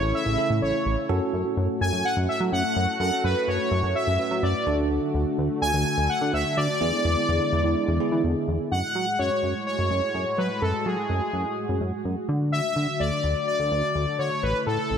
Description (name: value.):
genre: pop.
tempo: 126 BPM.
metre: 4/4.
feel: straight.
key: F# minor.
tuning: A4 = 440 Hz.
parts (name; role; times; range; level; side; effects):
analog synth brass; melody; 0.0-15.0 s; G#4 to G#5; -26 LUFS; left 1 dB; chorus, tape echo.
bell-like tine electric piano; accompaniment; 0.0-8.7 s; B3 to B4; -29 LUFS; right 2 dB; fast stereo tremolo.
sweeping resonant pad; sustained chords; 0.0-15.0 s; A2 to F#4; -31 LUFS; left 1 dB; chorus.
chorused synth bass; bass; 0.0-15.0 s; A1 to F#3; -26 LUFS; equal; none.
room: moderate lush hall reverb, RT60 2.2 s.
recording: none.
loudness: -22 LUFS.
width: side -7 dB against mid.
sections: 0.0-8.7 A section; 8.7-15.0 B section.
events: none.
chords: 0.0 A; 1.1 F#m; 4.7 D; 6.8 E7; 8.7 F#madd9; 12.3 D; 14.4 A.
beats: 0.14 0.62 | 1.10 1.57 2.05 2.52 | 3.00 3.48 3.95 4.43 | 4.91 5.38 5.86 6.33 | 6.81 7.29 7.76 8.24 | 8.71 9.19 9.67 10.14 | 10.62 11.10 11.57 12.05 | 12.53 13.00 13.48 13.95 | 14.43 14.91.